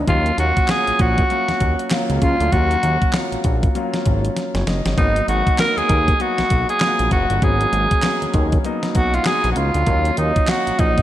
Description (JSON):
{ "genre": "R&B, new jack swing", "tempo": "98 BPM", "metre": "4/4", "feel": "swing 60% on 16ths", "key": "Eb minor", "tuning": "A4 = 440 Hz", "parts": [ { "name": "warm concert grand piano", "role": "accompaniment", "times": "0.0-11.0 s", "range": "F3 to F5", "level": "-24 LUFS", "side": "left 2 dB", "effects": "slapback echo" }, { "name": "fat analog bass", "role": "bass", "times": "0.0-11.0 s", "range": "Gb1 to Eb2", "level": "-20 LUFS", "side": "equal", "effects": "none" }, { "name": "raspy tenor saxophone", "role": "melody", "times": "0.1-11.0 s", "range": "Eb4 to Bb4", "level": "-19 LUFS", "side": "right 1 dB", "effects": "slapback echo" }, { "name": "clean 12-bit digital drum machine", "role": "drums", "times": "0.1-11.0 s", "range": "handclaps, hi-hat, kick drum, snare drum", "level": "-20 LUFS", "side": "equal", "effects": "none" } ], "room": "moderate lush hall reverb, RT60 1.7 s, studio reverb", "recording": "big arena sound", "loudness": "-16 LUFS", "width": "side -13 dB against mid", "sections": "0.0-11.0 A section", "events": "drum fill 4.4-5.0", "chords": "0.1 Ebm7; 5.0 Abm7; 9.9 Ebm7", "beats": "| 0.08 0.69 1.30 1.91 | 2.52 3.14 3.75 4.36 | 4.97 5.59 6.20 6.81 | 7.42 8.04 8.65 9.26 | 9.87 10.48" }